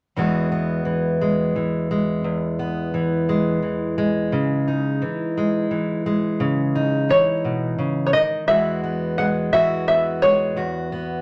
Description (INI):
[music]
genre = folk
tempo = 58 BPM (dotted quarters)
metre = 6/8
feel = straight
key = E major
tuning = A4 = 440 Hz
[part]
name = fingerpicked plugged-in steel-string acoustic guitar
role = accompaniment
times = 0.2-11.2 s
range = E2 to F#4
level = -23 LUFS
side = equal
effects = none
[part]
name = open-back banjo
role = melody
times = 7.1-11.2 s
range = C#5 to F#5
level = -20 LUFS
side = equal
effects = none
[sound]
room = wet studio reverb, RT60 0.7 s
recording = none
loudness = -21 LUFS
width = mono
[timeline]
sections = 0.2-8.5 A section; 8.5-11.2 B section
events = none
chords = 0.2 Eadd9; 4.3 C#madd9; 8.5 Eadd9